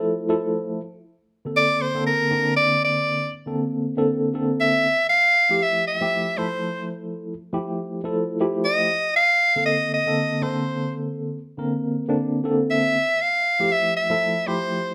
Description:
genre	jazz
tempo	118 BPM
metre	4/4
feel	swing 55% on 16ths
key	unclear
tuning	A4 = 440 Hz
part	mellow tine electric piano	accompaniment	0.0-14.9 s	D3 to Bb4	-26 LUFS	equal	medium tremolo, phaser
part	bright soprano saxophone	melody	1.6-14.9 s	Bb4 to F5	-21 LUFS	equal	none
room	moderate large studio reverb, RT60 0.9 s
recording	none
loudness	-22 LUFS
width	mono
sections	0.0-14.9 A section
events	soprano saxophone solo 0.0-14.9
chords	0.0 Fmaj7; 0.8 Bbmaj9; 4.9 Fmaj9; 8.9 Bbmaj9; 13.0 Fmaj9

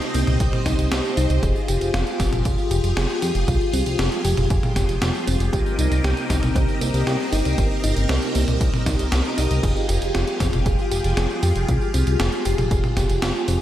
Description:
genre	synthwave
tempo	117 BPM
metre	4/4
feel	straight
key	unclear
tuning	A4 = 440 Hz
part	string machine, full ensemble	sustained chords	0.0-13.6 s	C4 to Eb5	-25 LUFS	equal	phaser, ensemble chorus, sidechain pumping
part	thumb-piano-like synth pluck	arpeggios	0.0-13.6 s	Bb3 to Ab4	-29 LUFS	right 1 dB	chorus, analog delay
part	gated 80s digital drum machine	drums	0.0-13.6 s	crash cymbal, hi-hat, snare drum, tambourine, toms	-27 LUFS	equal	gated reverb, gated reverb snare, small room ambience
part	chorused synth bass	bass	0.1-13.6 s	F1 to F2	-22 LUFS	equal	none
part	electronic kick drum	drums	0.4-13.1 s	none	-24 LUFS	equal	small room ambience
room	moderate lush hall reverb, RT60 2.5 s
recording	dreamy mix soaked in reverb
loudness	-18 LUFS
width	side -12 dB against mid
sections	0.0-13.6 A section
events	none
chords	0.0 Cm7; 1.4 Fmadd9; 5.5 Cm7; 9.6 Fmadd9

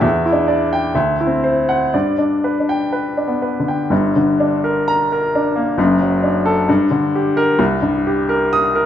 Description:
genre	classical, romantic character piece for solo piano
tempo	60-69 BPM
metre	2/4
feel	rubato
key	G major, G minor from 3.9 s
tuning	A4 = 441 Hz
part	clear baby grand piano	solo	0.0-8.9 s	F#1 to Eb6	-14 LUFS	equal	none
room	wet recital hall reverb, RT60 1.3 s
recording	none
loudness	-14 LUFS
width	side -10 dB against mid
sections	0.0-3.9 A section; 3.9-8.9 B section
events	none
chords	0.0 Em7; 0.9 D9; 1.9 G; 3.9 Gm; 5.8 D/F#; 6.7 Gm; 7.6 Cm7

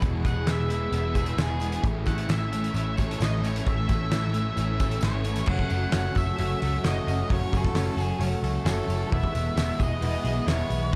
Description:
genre	rock, shoegaze and dream pop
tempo	132 BPM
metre	4/4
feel	straight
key	unclear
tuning	A4 = 438 Hz
part	evolving wavetable pad	sustained chords	0.0-11.0 s	E4 to E6	-42 LUFS	equal	none
part	twelve-string electric guitar	arpeggios	0.0-11.0 s	E3 to A4	-42 LUFS	equal	none
part	overdriven electric guitar	riff	0.0-5.5 s	E2 to A3	-38 LUFS	equal	none
part	raw garage guitar	riff	0.0-11.0 s	E2 to F#4	-37 LUFS	equal	overdrive, reverse reverb
part	thick fuzz guitar	riff	0.0-11.0 s	E2 to E4	-35 LUFS	equal	distortion, analog chorus
part	vintage muted picked electric bass	bass	0.0-11.0 s	E1 to C#2	-30 LUFS	equal	none
part	loose indie drum kit	drums	0.0-11.0 s	crash cymbal, hi-hat, kick drum, snare drum	-31 LUFS	equal	none
part	tambourine	percussion	0.0-10.8 s	none	-52 LUFS	equal	none
part	octave-fuzz lead guitar	melody	0.3-11.0 s	G#4 to F#5	-36 LUFS	equal	distortion, slapback echo
room	studio reverb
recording	dark, warm production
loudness	-26 LUFS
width	mono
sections	0.0-5.5 A section; 5.5-11.0 B section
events	none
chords	0.0 E; 1.8 A; 5.5 F#m7; 9.1 E

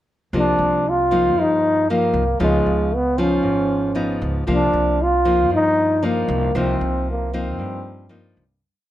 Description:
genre	bossa nova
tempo	116 BPM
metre	4/4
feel	straight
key	C minor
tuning	A4 = 441 Hz
part	nylon-string guitar	accompaniment	0.3-8.6 s	G2 to Eb4	-22 LUFS	left 2 dB	none
part	upright bass	bass	0.3-8.6 s	Ab1 to G2	-25 LUFS	right 1 dB	none
part	breathy trombone	melody	0.4-8.4 s	Ab3 to F4	-19 LUFS	equal	none
room	moderate large studio reverb, RT60 1.1 s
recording	none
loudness	-17 LUFS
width	side -13 dB against mid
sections	0.3-8.6 A section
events	fade-out 6.5-8.6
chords	0.3 Cm11; 2.4 Db9; 4.5 Cm11

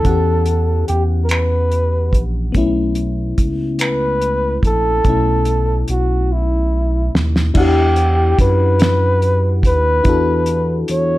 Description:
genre	slow six-eight R&B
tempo	48 BPM (dotted quarters)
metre	6/8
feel	straight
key	E dorian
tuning	A4 = 438 Hz
part	breathy flugelhorn	melody	0.0-11.2 s	E4 to C#5	-18 LUFS	equal	slapback echo
part	mellow FM electric piano	accompaniment	0.0-11.2 s	B2 to F#5	-22 LUFS	left 3 dB	chorus
part	cloth-damped thuddy drum kit	drums	0.0-11.1 s	crash cymbal, finger snaps, hi-hat, kick drum, snare drum	-18 LUFS	equal	none
part	smooth synth bass	bass	0.1-11.2 s	A#1 to F#2	-17 LUFS	equal	none
room	light reverb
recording	none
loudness	-14 LUFS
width	side -16 dB against mid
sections	0.0-7.5 A section; 7.5-11.2 B section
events	drum fill 6.3-7.5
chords	0.0 Em69; 2.5 B9sus4; 7.5 Em9

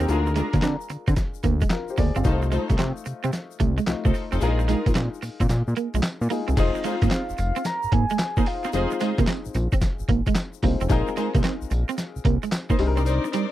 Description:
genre	R&B, new jack swing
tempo	111 BPM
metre	4/4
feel	swing 66% on 16ths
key	F dorian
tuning	A4 = 443 Hz
part	soft octave-layered synth lead	melody	0.0-1.2, 6.6-9.2 s	Eb5 to Bb5	-30 LUFS	left 1 dB	chorus, phaser, slapback echo
part	warm baby grand piano	accompaniment	0.0-13.5 s	G3 to F5	-32 LUFS	left 6 dB	none
part	electric guitar at the edge of break-up	riff	0.0-13.4 s	G3 to C4	-27 LUFS	right 8 dB	lush chorus
part	warm studio string section	stabs	0.0-13.5 s	C4 to D5	-30 LUFS	left 3 dB	none
part	fat analog bass	bass	0.0-13.2 s	F1 to D3	-23 LUFS	equal	none
part	boom bap sampler-style drum kit	drums	0.0-13.5 s	crash cymbal, handclaps, hi-hat, kick drum, snare drum, tambourine	-24 LUFS	equal	overdrive
part	egg shaker	percussion	0.0-13.5 s	none	-47 LUFS	left 18 dB	none
room	little or no reverb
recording	dry, close 1970s-style studio recording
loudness	-21 LUFS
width	side -14 dB against mid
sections	0.0-6.6 A section; 6.6-13.5 B section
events	kick muted 5.5-6.6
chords	0.1 Bb7/D; 2.2 F7/C; 4.4 Bb7sus4; 6.6 Fm7; 10.9 Bb9sus4; 12.8 Cm9

